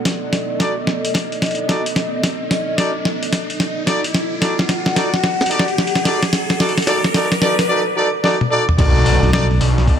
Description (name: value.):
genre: glitch hop.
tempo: 110 BPM.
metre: 4/4.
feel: swing 63% on 16ths.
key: unclear.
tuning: A4 = 442 Hz.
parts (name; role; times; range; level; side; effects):
dark analog pad; sustained chords; 0.0-10.0 s; B3 to F#5; -24 LUFS; equal; chorus, vintage 12-bit sampler grit, sidechain pumping.
riser and impact; sound effects; 0.0-10.0 s; none; -24 LUFS; equal; none.
boom bap sampler-style drum kit; drums; 0.1-10.0 s; crash cymbal, hi-hat, snare drum, toms; -19 LUFS; equal; none.
electronic kick drum; drums; 0.1-10.0 s; none; -19 LUFS; equal; none.
clear horn section; stabs; 0.6-10.0 s; D#4 to D5; -20 LUFS; equal; vintage 12-bit sampler grit, sidechain pumping, low-pass filter, ping-pong delay.
phased detuned saw bass; bass; 8.8-10.0 s; B1; -15 LUFS; equal; phaser, overdrive.
modern bright fingered electric bass; bass; 9.2-9.6 s; B1; -16 LUFS; equal; tube saturation.
room: moderate plate reverb, RT60 2.5 s.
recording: none.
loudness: -15 LUFS.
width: side -8 dB against mid.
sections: 0.0-8.8 A section; 8.8-10.0 B section.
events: build-up 0.0-8.8; drum fill 0.0-7.7, 8.2-8.8; riser 0.0-7.7; drop 8.8-10.0; impact 8.8-10.0.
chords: 0.0 B7#9.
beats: | 0.06 0.60 1.15 1.69 | 2.24 2.78 3.33 3.88 | 4.42 4.97 5.51 6.06 | 6.60 7.15 7.69 8.24 | 8.78 9.33 9.88.